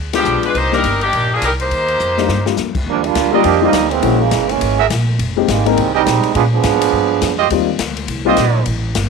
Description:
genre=jazz, big band swing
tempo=207 BPM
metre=4/4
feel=swing 60% on 8ths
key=unclear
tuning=A4 = 440 Hz
part: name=upright bass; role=bass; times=0.0-9.1 s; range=F1 to Bb2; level=-20 LUFS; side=equal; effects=none
part: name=warm baby grand piano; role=accompaniment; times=0.1-8.4 s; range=G3 to Bb4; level=-17 LUFS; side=left 14 dB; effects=none
part: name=swinging big-band drum kit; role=drums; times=0.1-9.0 s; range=crash cymbal, hi-hat, kick drum, ride cymbal, snare drum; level=-23 LUFS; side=left 7 dB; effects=none
part: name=edgy saxophone section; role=melody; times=0.2-2.5 s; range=Eb3 to C5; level=-16 LUFS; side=left 1 dB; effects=none
part: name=clear trombone section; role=second line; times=2.9-7.4 s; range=C#3 to Bb4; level=-15 LUFS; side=right 14 dB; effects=none
part: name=mellow trumpet section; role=stabs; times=3.3-8.6 s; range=F4 to E5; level=-17 LUFS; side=right 13 dB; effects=none
room=light reverb, small room ambience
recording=1960s-style stereo with parts hard left and right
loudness=-13 LUFS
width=side -4 dB against mid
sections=0.0-2.9 A section; 2.9-9.1 B section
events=band accent 0.1; drum fill 2.0-2.6; trombone section solo 2.9-9.1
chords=0.0 G7b9; 0.5 Cm9; 2.9 Ebmaj9; 4.0 F#9; 5.2 Fm11; 7.5 Eb69

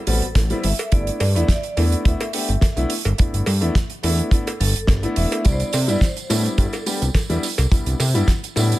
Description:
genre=nu-disco, nu disco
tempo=106 BPM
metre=4/4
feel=straight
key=unclear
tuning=A4 = 441 Hz
part: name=vibraphone with medium hard mallets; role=melody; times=0.1-7.4 s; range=A4 to E5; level=-30 LUFS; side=right 1 dB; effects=vintage 12-bit sampler grit, dub echo
part: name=warm grand piano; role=accompaniment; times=0.1-8.8 s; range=G3 to G4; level=-25 LUFS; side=left 1 dB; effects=sidechain pumping
part: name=fat analog bass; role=bass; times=0.1-8.7 s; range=E1 to C3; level=-20 LUFS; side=equal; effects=none
part: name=damped 70s drum kit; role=drums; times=0.1-8.8 s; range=hi-hat, snare drum, tambourine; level=-26 LUFS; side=right 3 dB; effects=none
part: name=kick drum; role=drums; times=0.4-8.4 s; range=none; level=-17 LUFS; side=equal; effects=none
part: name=cowbell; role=percussion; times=0.4-8.7 s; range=none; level=-30 LUFS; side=equal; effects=none
room=small room ambience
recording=none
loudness=-17 LUFS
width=side -16 dB against mid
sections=0.0-8.8 A section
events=none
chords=0.0 Am7; 0.9 G69; 5.5 Cmaj7

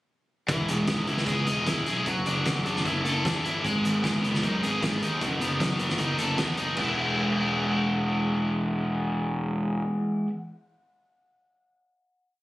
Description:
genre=indie rock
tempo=153 BPM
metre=4/4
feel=straight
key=E major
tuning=A4 = 441 Hz
part: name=cranked stack guitar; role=riff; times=0.5-10.3 s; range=E3 to D#5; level=-26 LUFS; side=left 1 dB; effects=overdrive
part: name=fuzz picked electric bass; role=bass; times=0.5-9.8 s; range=E1 to F#2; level=-30 LUFS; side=right 1 dB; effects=overdrive
part: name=loose indie drum kit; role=drums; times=0.5-6.9 s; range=crash cymbal, hi-hat, kick drum, snare drum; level=-32 LUFS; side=equal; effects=none
room=light reverb, small room ambience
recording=recorded on a phone in the room, studio reverb, compression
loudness=-24 LUFS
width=side -16 dB against mid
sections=0.5-6.8 interlude; 6.8-9.9 final chord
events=none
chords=0.5 Emaj7; 2.1 Dadd9/F#; 3.6 G#m; 5.2 B7/F#; 6.8 E

